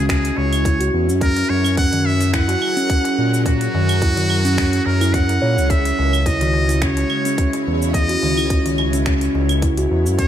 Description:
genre	organic downtempo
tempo	107 BPM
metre	4/4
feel	swing 54% on 16ths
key	C# dorian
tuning	A4 = 440 Hz
part	trumpet with metal mute	melody	0.0-10.3 s	F#4 to F#5	-23 LUFS	equal	ping-pong delay
part	bowed-like drone	sustained chords	0.0-10.3 s	C#3 to C#5	-26 LUFS	right 1 dB	built-in reverb, phaser, sidechain pumping
part	steel tongue drum	arpeggios	0.0-10.3 s	C#4 to C#5	-22 LUFS	equal	ping-pong delay, slapback echo
part	smooth synth bass	bass	0.0-10.3 s	C#2 to A#2	-19 LUFS	equal	none
part	electronic kick drum	drums	0.1-10.3 s	none	-20 LUFS	equal	none
part	organic electronic drum kit	drums	0.1-10.3 s	claves, finger snaps, hi-hat, shaker	-27 LUFS	right 2 dB	none
part	darbuka	percussion	0.4-10.3 s	none	-30 LUFS	left 3 dB	none
room	moderate lush hall reverb, RT60 1.7 s, digital ambience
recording	big arena sound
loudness	-15 LUFS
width	side -10 dB against mid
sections	0.0-10.3 A section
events	none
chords	0.0 C#m; 1.2 F#add9; 5.7 C#madd9

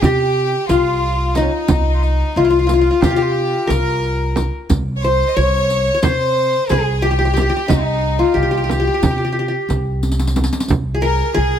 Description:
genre	Turkish makam ensemble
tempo	180 BPM (eighths)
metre	9/8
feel	straight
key	C makam kurdi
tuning	A4 = 440 Hz
part	qanun	melody	0.0-11.6 s	Eb4 to Db5	-18 LUFS	left 2 dB	none
part	bright chamber violin section	second line	0.0-11.6 s	Eb4 to Eb5	-26 LUFS	equal	none
part	warm violin	second line	0.0-11.6 s	Db4 to Db5	-22 LUFS	left 1 dB	none
part	upright bass	bass	0.0-11.6 s	C2 to C3	-19 LUFS	equal	none
part	frame drum	percussion	0.0-10.9 s	none	-19 LUFS	right 3 dB	none
part	riq	percussion	0.0-11.1 s	none	-25 LUFS	left 1 dB	none
room	light reverb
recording	none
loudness	-14 LUFS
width	side -9 dB against mid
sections	0.0-11.6 A section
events	drum fill 10.0-10.7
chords	none

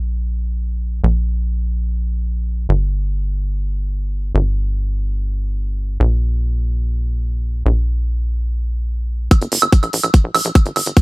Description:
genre	psychedelic trance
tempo	145 BPM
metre	4/4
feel	straight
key	unclear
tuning	A4 = 440 Hz
part	tight sequencer bass	bass	0.0-10.9 s	G1 to Bb1	-18 LUFS	equal	high-pass filter
part	electronic hi-hat and woodblock	drums	9.3-11.0 s	none	-17 LUFS	right 3 dB	high-pass filter on snare, low-pass filter on snare, high-pass filter on hats, low-pass filter on hats, high-pass filter on perc, low-pass filter on perc, high-pass filter on cymbals, low-pass filter on cymbals, high-pass filter on room, low-pass filter on room
part	electronic kick drum	drums	9.3-11.0 s	none	-9 LUFS	equal	overdrive
room	little or no reverb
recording	none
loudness	-16 LUFS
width	side -24 dB against mid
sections	0.0-9.3 A section; 9.3-11.0 B section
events	build-up 9.3-11.0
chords	none

